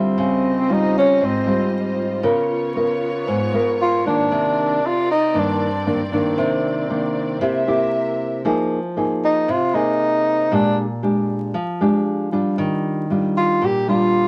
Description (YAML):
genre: bossa nova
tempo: 116 BPM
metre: 4/4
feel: straight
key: C minor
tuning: A4 = 441 Hz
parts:
  - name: breathy tenor saxophone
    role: melody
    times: 0.0-5.9, 9.2-14.3 s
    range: C4 to G4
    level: -20 LUFS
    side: equal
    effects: none
  - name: nylon-string guitar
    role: accompaniment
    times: 0.0-14.3 s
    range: G2 to Bb4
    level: -22 LUFS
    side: equal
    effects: none
  - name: warm studio string section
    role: sustained chords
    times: 0.2-8.4 s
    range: Cb4 to E5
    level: -31 LUFS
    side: equal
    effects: none
room: moderate studio reverb, RT60 0.6 s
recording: vinyl crackle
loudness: -20 LUFS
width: mono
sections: 0.0-8.4 A section; 8.4-14.3 A section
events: tenor saxophone solo 0.0-14.3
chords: 0.2 Dbmaj9#11; 2.2 Db13; 4.3 Cm9; 7.4 C7; 8.4 Fm7; 10.5 Bb6; 12.6 Ebmaj9